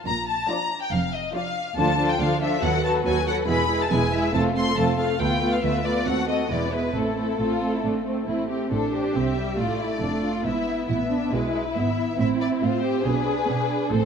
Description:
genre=quick classical-period movement for string orchestra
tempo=139 BPM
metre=4/4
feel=straight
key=A minor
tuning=A4 = 440 Hz
part: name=rich symphonic violin section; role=melody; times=0.1-14.1 s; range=A4 to C6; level=-28 LUFS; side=left 5 dB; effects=none
part: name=dark symphonic double bass section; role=bass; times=0.1-14.1 s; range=E1 to B2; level=-30 LUFS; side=right 4 dB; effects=none
part: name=warm symphonic cello section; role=bass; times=0.1-14.1 s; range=D2 to B3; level=-31 LUFS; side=right 4 dB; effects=none
part: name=dark symphonic violin section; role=second line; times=0.5-14.1 s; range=C4 to D5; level=-27 LUFS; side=left 3 dB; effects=none
part: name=dark studio viola section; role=accompaniment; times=0.5-14.1 s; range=F3 to F#4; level=-26 LUFS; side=right 3 dB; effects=none
room=moderate scoring stage reverb, RT60 1.9 s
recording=none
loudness=-21 LUFS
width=side -7 dB against mid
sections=0.0-8.7 A section; 8.7-14.1 B section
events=none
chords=0.1 Bb; 1.8 Dm; 2.6 B7/D#; 3.5 E; 4.3 F; 5.2 Bm7b5/D; 6.1 D#dim7; 6.5 E7; 6.9 Am; 9.6 F6; 10.5 E/G#; 12.2 Am; 13.1 G#dim/B

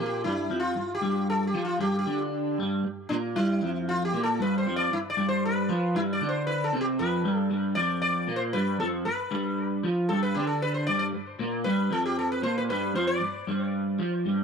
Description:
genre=rock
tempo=116 BPM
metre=4/4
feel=straight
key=G mixolydian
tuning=A4 = 440 Hz
part: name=sitar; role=melody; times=0.0-13.6 s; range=D4 to D5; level=-29 LUFS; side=left 2 dB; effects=tape echo
part: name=electric guitar through a small old amp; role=riff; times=0.0-14.4 s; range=F2 to F4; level=-27 LUFS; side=right 1 dB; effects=rotary speaker, double-tracked left and right
room=light reverb, studio reverb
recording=none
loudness=-25 LUFS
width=side -6 dB against mid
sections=0.0-14.4 A section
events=sitar solo 0.0-14.4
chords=0.0 G

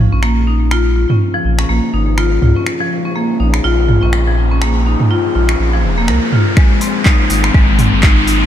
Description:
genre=afro house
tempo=123 BPM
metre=4/4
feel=swing 58% on 16ths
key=Bb minor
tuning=A4 = 435 Hz
part: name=dark analog pad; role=sustained chords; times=0.0-8.5 s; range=Bb3 to C5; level=-27 LUFS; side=equal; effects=chorus, sidechain pumping
part: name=warm sub bass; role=bass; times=0.0-8.5 s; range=F1 to Db2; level=-14 LUFS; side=equal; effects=sidechain pumping
part: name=riser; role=sound effects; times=0.3-8.5 s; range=none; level=-22 LUFS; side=equal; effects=none
part: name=marimba with hard mallets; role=arpeggios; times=0.1-8.5 s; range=F3 to Bb4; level=-17 LUFS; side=left 3 dB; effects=sidechain pumping, low-pass filter, digital delay
part: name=deep house drum kit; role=drums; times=0.2-8.4 s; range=finger snaps, handclaps, hi-hat, toms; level=-18 LUFS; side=right 1 dB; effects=none
part: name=electronic kick drum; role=drums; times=6.6-8.1 s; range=none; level=-11 LUFS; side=equal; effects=none
room=light reverb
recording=dark, warm production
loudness=-11 LUFS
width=side -10 dB against mid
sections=0.0-8.5 A section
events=build-up 0.0-8.5; filter sweep on marimba 0.0-8.5; filter sweep on analog synth pad 0.0-8.5; riser 0.3-8.5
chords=0.0 Bbm9; 6.6 Ab69

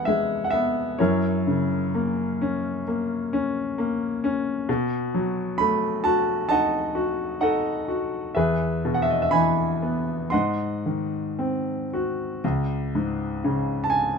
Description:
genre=classical, lyrical solo piano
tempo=55-67 BPM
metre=4/4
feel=rubato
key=E major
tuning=A4 = 439 Hz
part: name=clear grand piano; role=solo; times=0.0-14.2 s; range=C#2 to B#5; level=-22 LUFS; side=equal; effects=none
room=light reverb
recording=none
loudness=-22 LUFS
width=side -5 dB against mid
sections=0.0-12.4 A section; 12.4-14.2 B section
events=none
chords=0.0 E; 1.0 F#7; 4.7 B7; 8.4 E; 10.3 G#7; 12.4 C#5

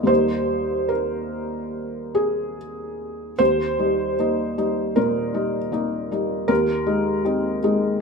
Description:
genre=neoclassical minimalist piano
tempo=71-80 BPM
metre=4/4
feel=rubato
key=unclear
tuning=A4 = 440 Hz
part: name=felt-muted upright piano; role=solo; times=0.0-8.0 s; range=Eb2 to Eb5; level=-20 LUFS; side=equal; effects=none
room=wet large studio reverb, RT60 1.2 s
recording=band playing live in one room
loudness=-20 LUFS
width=side -4 dB against mid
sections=0.0-3.4 A section; 3.4-8.0 B section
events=none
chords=0.0 Eb; 6.5 Abadd9/Eb

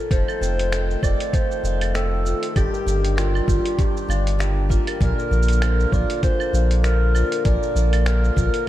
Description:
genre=folktronica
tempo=98 BPM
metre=4/4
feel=swing 56% on 16ths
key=Bb major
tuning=A4 = 439 Hz
part: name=marimba with medium hard mallets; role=second line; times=0.0-8.5 s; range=F4 to F5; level=-31 LUFS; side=left 3 dB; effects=diffuse ambient delay
part: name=picked swing-style acoustic guitar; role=arpeggios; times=0.0-8.7 s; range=G2 to Bb4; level=-31 LUFS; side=equal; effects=wide subtle chorus, diffuse ambient delay
part: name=dark clarinet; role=melody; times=0.1-8.7 s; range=F4 to D5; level=-26 LUFS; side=right 1 dB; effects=diffuse ambient delay
part: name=pedal harmonium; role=sustained chords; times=0.1-8.7 s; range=D3 to G4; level=-30 LUFS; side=equal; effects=none
part: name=warm sub bass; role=bass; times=0.1-8.5 s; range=F1 to Bb1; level=-20 LUFS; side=equal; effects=none
part: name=electronic kick drum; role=drums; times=0.1-8.5 s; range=none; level=-21 LUFS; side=equal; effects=none
part: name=lo-fi sampler-style drum kit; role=drums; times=0.1-8.7 s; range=cabasa, claves, finger snaps, hi-hat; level=-32 LUFS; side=right 2 dB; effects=none
room=light reverb, studio ambience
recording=none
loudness=-18 LUFS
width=side -13 dB against mid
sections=0.1-8.7 A section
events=none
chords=0.1 F7; 2.6 Ebmaj7/G; 5.0 Bb

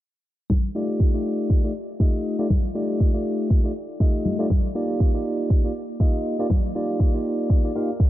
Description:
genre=nu-disco, nu disco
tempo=120 BPM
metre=4/4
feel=swing 56% on 16ths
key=F mixolydian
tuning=A4 = 440 Hz
part: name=electronic hi-hat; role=drums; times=0.5-8.1 s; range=none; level=-71 LUFS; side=right 2 dB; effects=none
part: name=electronic kick drum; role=drums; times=0.5-8.1 s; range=none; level=-19 LUFS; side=equal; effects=none
part: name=congas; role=percussion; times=0.5-6.6 s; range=none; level=-30 LUFS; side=left 3 dB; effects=none
part: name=tine electric piano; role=accompaniment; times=0.7-7.9 s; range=A3 to F5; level=-25 LUFS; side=equal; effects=sidechain pumping, low-pass filter, diffuse ambient delay
room=light reverb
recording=low-pass filter, nothing above 10.7 kHz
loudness=-20 LUFS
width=side -14 dB against mid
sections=0.5-8.1 A section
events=filter sweep on tine electric piano 0.5-8.1; filter sweep 0.5-8.1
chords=0.5 F13; 4.5 Ebmaj9

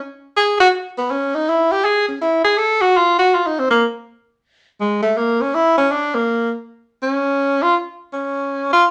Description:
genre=jazz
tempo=162 BPM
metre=3/4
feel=swing 64% on 8ths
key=unclear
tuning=A4 = 440 Hz
part: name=warm tenor saxophone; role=solo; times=0.4-8.9 s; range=Ab3 to A4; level=-17 LUFS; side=equal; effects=none
room=wet studio reverb, RT60 0.6 s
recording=none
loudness=-18 LUFS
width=mono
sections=0.0-4.0 A section; 4.0-8.9 A section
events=tenor saxophone solo 0.0-4.0, 4.0-8.9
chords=none

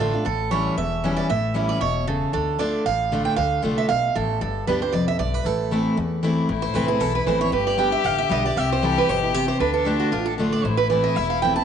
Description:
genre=bluegrass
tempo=231 BPM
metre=4/4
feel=swing 54% on 8ths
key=A minor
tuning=A4 = 440 Hz
part: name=picked steel-string acoustic guitar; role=melody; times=0.0-11.6 s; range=E4 to A5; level=-23 LUFS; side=right 8 dB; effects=none
part: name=picked steel-string acoustic guitar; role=accompaniment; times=0.0-11.6 s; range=E2 to G4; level=-24 LUFS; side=left 2 dB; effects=none
part: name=upright bass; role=bass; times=0.0-11.6 s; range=E1 to E2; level=-30 LUFS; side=left 2 dB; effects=none
part: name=clear fiddle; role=second line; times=6.5-11.6 s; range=D4 to G4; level=-26 LUFS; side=left 13 dB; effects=none
room=moderate plate reverb, RT60 2.8 s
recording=1960s-style stereo with parts hard left and right, nothing above 10.3 kHz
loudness=-20 LUFS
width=side -8 dB against mid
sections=0.0-6.5 A section; 6.5-11.6 B section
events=steel-string acoustic guitar solo 6.5-11.6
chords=0.3 A7; 2.3 Dm; 4.4 G; 5.5 Am; 7.5 G; 8.6 C; 9.6 Dm; 10.6 Am

